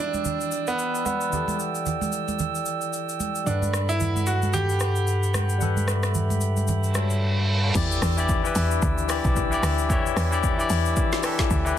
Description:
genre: amapiano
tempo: 112 BPM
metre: 4/4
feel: swing 58% on 16ths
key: E minor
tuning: A4 = 440 Hz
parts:
  - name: clear concert grand piano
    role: melody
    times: 0.0-7.2 s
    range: B3 to G4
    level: -28 LUFS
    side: right 2 dB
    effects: ping-pong delay
  - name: barky tine electric piano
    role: accompaniment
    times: 0.0-11.8 s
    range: E3 to F#5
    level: -28 LUFS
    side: left 6 dB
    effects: medium stereo tremolo
  - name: glass harmonica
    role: sustained chords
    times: 0.0-11.8 s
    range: D4 to E6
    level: -32 LUFS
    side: right 5 dB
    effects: sidechain pumping
  - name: deep house drum kit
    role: drums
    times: 0.1-11.8 s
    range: crash cymbal, hi-hat, kick drum, rim click, shaker, snare drum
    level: -28 LUFS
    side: equal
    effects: soft clipping on snare
  - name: congas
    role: percussion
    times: 0.1-7.1 s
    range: none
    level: -32 LUFS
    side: right 4 dB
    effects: none
  - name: punchy sub bass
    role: bass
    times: 3.5-7.7 s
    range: G2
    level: -24 LUFS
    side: equal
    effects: none
  - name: reverse cymbal and impact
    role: sound effects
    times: 6.9-9.9 s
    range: none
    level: -31 LUFS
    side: right 2 dB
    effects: none
  - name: woody log drum bass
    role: bass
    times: 7.8-11.7 s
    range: B1 to E2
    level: -25 LUFS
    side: equal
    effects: none
room: little or no reverb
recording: dense, heavily limited modern master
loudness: -21 LUFS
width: side -10 dB against mid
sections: 0.0-7.8 A section; 7.8-11.8 B section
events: reverse cymbal 6.9-7.8; drums muted 7.2-7.8; drop 7.8-11.8; impact 7.8-9.9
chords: 0.0 Em7; 3.5 Gmaj9; 7.8 Em7

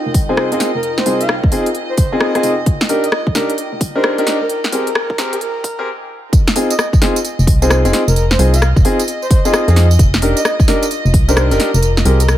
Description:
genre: UK garage, two-step garage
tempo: 131 BPM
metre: 4/4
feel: swing 64% on 16ths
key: F dorian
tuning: A4 = 436 Hz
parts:
  - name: warm studio violin section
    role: sustained chords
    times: 0.0-12.4 s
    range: Eb5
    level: -28 LUFS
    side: right 1 dB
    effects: sidechain pumping
  - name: airy breathy pad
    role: texture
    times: 0.0-5.9, 10.0-12.4 s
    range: Eb4 to G5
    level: -29 LUFS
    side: right 2 dB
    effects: chorus, sidechain pumping
  - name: organ-like FM bass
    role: bass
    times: 0.1-12.4 s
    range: F1 to F2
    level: -14 LUFS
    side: equal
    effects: high-pass filter
  - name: electronic kick drum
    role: drums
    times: 0.1-11.3 s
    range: none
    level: -13 LUFS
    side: equal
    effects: studio reverb
  - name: house drum kit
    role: drums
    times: 0.1-12.4 s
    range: hi-hat, rim click, snare drum, tambourine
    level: -19 LUFS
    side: equal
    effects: studio reverb
  - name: breathy flute-like synth lead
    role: melody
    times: 0.3-12.4 s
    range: Ab4 to F5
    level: -23 LUFS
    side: equal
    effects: chorus, tremolo, ping-pong delay
  - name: warm concert grand piano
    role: stabs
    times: 0.3-12.2 s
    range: C4 to Bb4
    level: -18 LUFS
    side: left 1 dB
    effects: low-pass filter, ping-pong delay
room: light reverb, digital ambience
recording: high-pass filter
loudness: -12 LUFS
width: side -12 dB against mid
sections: 0.0-6.3 A section; 6.3-12.4 B section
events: build-up 0.0-6.3; filter sweep on grand piano 0.0-6.3; stop 5.9-6.3; drop 6.3-12.4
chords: 0.0 Abmaj9/F; 2.7 Ebmaj7/F; 4.5 Abmaj9/F; 6.3 Fm7; 10.0 Ebmaj7/F; 11.8 Abmaj9/F

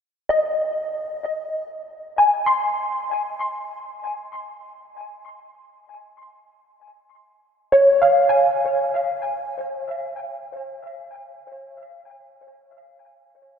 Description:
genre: ambient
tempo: free time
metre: none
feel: none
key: unclear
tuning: A4 = 440 Hz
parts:
  - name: soft round pluck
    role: solo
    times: 0.3-9.6 s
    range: Db5 to C6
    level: -20 LUFS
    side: equal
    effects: ensemble chorus, vintage 12-bit sampler grit, analog delay
room: wet cathedral reverb, RT60 4.8 s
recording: dreamy mix soaked in reverb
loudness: -19 LUFS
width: side -7 dB against mid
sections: 0.3-13.6 A section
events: none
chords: 0.3 Ab/Eb; 5.9 Db; 11.5 N.C.

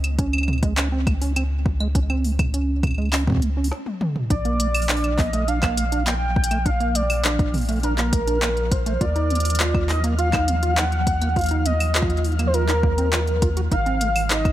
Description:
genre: IDM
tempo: 102 BPM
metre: 4/4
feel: straight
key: unclear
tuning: A4 = 444 Hz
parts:
  - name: warm sub bass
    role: bass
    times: 0.0-14.5 s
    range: Ab1 to Eb2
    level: -23 LUFS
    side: equal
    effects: tube saturation
  - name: organic electronic drum kit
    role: drums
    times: 0.0-14.5 s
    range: claves, handclaps, hi-hat, snare drum, toms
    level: -26 LUFS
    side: equal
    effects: overdrive
  - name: deep acid bass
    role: arpeggios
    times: 0.2-14.5 s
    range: Ab3 to Gb4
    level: -28 LUFS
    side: right 3 dB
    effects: tape echo
  - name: electronic kick drum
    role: drums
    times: 0.2-14.5 s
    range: none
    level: -22 LUFS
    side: equal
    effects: overdrive
  - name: warm velvety synth lead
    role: melody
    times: 4.3-14.5 s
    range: Bb4 to G5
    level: -25 LUFS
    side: equal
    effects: chorus, tape echo
  - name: flickering grainy texture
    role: texture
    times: 4.6-14.5 s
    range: F3 to F6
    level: -33 LUFS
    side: left 1 dB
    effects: built-in reverb
room: digital ambience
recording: none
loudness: -19 LUFS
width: side -13 dB against mid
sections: 0.0-4.3 A section; 4.3-14.5 B section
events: drum fill 3.7-4.3; stop 3.7-4.3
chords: 0.0 Db5; 4.3 Bbmaj7; 9.0 Ebsus2; 13.7 Ab6

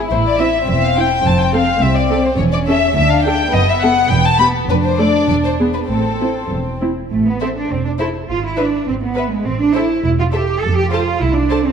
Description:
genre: quick classical-period movement for string orchestra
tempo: 103 BPM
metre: 2/4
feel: rubato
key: A minor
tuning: A4 = 441 Hz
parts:
  - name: warm symphonic violin section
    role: melody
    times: 0.0-11.6 s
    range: A4 to B5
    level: -17 LUFS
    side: left 4 dB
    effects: none
  - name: warm symphonic violin section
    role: second line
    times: 0.0-11.6 s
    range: B3 to C5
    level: -21 LUFS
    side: left 3 dB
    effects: none
  - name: dark symphonic double bass section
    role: bass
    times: 0.1-11.7 s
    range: E1 to D2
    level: -20 LUFS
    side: right 3 dB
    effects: none
  - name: rich symphonic cello section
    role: bass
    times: 0.1-11.7 s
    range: C2 to A4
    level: -19 LUFS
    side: right 3 dB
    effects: none
  - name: dark symphonic viola section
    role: accompaniment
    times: 0.4-11.6 s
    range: A3 to B4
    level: -22 LUFS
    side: right 1 dB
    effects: none
room: moderate scoring stage reverb, RT60 1.5 s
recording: dark, warm production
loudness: -13 LUFS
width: side -7 dB against mid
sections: 0.0-7.1 A section; 7.1-11.7 A section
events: none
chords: 0.1 Am; 1.2 F; 2.4 A/E; 3.0 D5; 3.5 B5/F#; 4.1 Em; 4.7 Dm/F; 5.3 E7; 5.9 Am; 8.3 E7/G# (rootless); 9.5 A5; 10.6 F

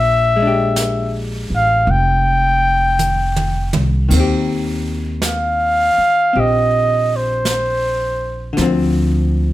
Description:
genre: jazz ballad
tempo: 54 BPM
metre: 4/4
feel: swing 67% on 8ths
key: unclear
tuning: A4 = 440 Hz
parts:
  - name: breathy trumpet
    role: melody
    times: 0.0-8.6 s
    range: C5 to G5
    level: -15 LUFS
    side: equal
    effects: none
  - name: upright bass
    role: bass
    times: 0.0-9.5 s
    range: F1 to Eb2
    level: -19 LUFS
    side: equal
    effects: none
  - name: archtop guitar, miked and amplified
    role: accompaniment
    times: 0.4-9.5 s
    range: D3 to G4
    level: -21 LUFS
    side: left 3 dB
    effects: none
  - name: jazz brush drum kit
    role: drums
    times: 0.8-9.5 s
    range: brushed snare drum, hi-hat, kick drum, ride cymbal, snare drum, toms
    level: -24 LUFS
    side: right 2 dB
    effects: none
room: moderate studio reverb, RT60 0.8 s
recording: none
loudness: -14 LUFS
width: side -15 dB against mid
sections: 0.0-9.5 A section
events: drum fill 3.0-4.1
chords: 0.0 Bb13; 4.1 Eb69; 8.6 Dm7

